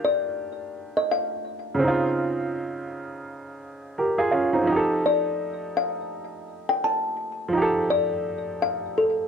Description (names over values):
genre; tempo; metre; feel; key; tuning
hip hop; 84 BPM; 4/4; swing 58% on 16ths; unclear; A4 = 440 Hz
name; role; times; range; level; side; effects
kalimba; melody; 0.0-9.3 s; A4 to A5; -25 LUFS; left 3 dB; low-pass filter, tape echo
warm upright piano; accompaniment; 0.0-9.3 s; Db3 to Bb4; -25 LUFS; right 2 dB; cassette tape, low-pass filter
room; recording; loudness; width
moderate spring reverb, RT60 1.4 s, small room ambience; none; -22 LUFS; side -7 dB against mid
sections
0.0-9.3 A section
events
none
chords
0.0 Ebmaj9; 1.8 Dbmaj9; 4.7 F9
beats
0.40 1.11 | 1.82 2.54 3.25 3.97 | 4.68 5.40 6.11 6.83 | 7.54 8.25 8.97